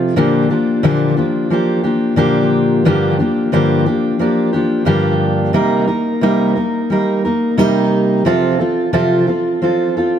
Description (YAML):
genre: pop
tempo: 89 BPM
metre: 4/4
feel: straight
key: Bb major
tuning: A4 = 440 Hz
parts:
  - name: fingerpicked steel-string acoustic guitar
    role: solo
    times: 0.0-10.2 s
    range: G2 to Bb4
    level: -13 LUFS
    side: equal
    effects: digital delay
room: moderate studio reverb, RT60 0.9 s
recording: none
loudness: -13 LUFS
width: side -9 dB against mid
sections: 0.0-10.2 A section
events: none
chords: 0.2 Bb6; 2.9 Gm7; 5.6 Cm7; 8.3 F/C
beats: | 0.17 0.84 1.51 2.19 | 2.86 3.54 4.21 4.89 | 5.56 6.24 6.92 7.59 | 8.27 8.94 9.62